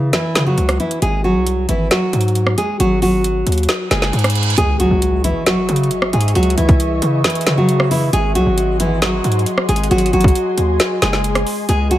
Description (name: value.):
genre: hip hop, trap.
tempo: 135 BPM.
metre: 4/4.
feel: half-time.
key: C# harmonic minor.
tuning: A4 = 439 Hz.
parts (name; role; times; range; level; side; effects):
nylon-string guitar; melody; 0.0-12.0 s; E3 to G#4; -17 LUFS; equal; none.
distorted 808-style bass; bass; 0.0-12.0 s; F#1 to C#3; -17 LUFS; equal; distortion.
trap drum kit; drums; 0.1-12.0 s; hi-hat, kick drum, rim click, snare drum; -18 LUFS; equal; none.
reverse cymbal and impact; sound effects; 3.9-6.4 s; none; -25 LUFS; right 2 dB; none.
ethereal airy pad; sustained chords; 5.0-12.0 s; G#4 to C#6; -25 LUFS; left 1 dB; ensemble chorus, built-in reverb.
room: light reverb.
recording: faint mains hum.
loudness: -13 LUFS.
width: side -13 dB against mid.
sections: 0.0-4.6 A section; 4.6-12.0 B section.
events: reverse cymbal 3.9-4.6; impact 4.6-6.4.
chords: 0.0 C#m; 1.0 G#7(no3); 4.6 C#madd9; 8.1 G#7.